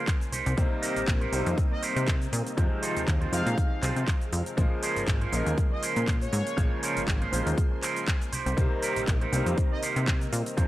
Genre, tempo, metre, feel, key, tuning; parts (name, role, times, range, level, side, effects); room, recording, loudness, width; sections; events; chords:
filtered disco house; 120 BPM; 4/4; swing 55% on 16ths; A4 = 441 Hz
bright grand piano; accompaniment; 0.0-10.7 s; C3 to Db5; -32 LUFS; equal; phaser, sidechain pumping
string machine, full ensemble; sustained chords; 0.0-10.7 s; C4 to C6; -40 LUFS; left 1 dB; ensemble chorus, sidechain pumping
electric guitar with an envelope filter; riff; 0.0-10.5 s; Db4 to Eb5; -33 LUFS; right 4 dB; sidechain pumping
electronic kick drum; drums; 0.1-10.7 s; -26 LUFS; equal
house drum kit; drums; 0.1-10.7 s; cabasa, handclaps, hi-hat; -35 LUFS; equal; sidechain pumping on hats, sidechain pumping on perc, sidechain pumping on cymbals
plucky analog bass; bass; 0.3-10.7 s; Ab1 to C3; -29 LUFS; equal; tube saturation, sidechain pumping
analog synth brass; melody; 1.7-9.8 s; Db5 to F5; -37 LUFS; equal; chorus, sidechain pumping
little or no reverb; dry, gritty hardware recording; -24 LUFS; side -15 dB against mid
0.0-10.7 A section
0.3 Cm7; 2.6 Fm7; 4.6 Bbm9; 8.3 Cm7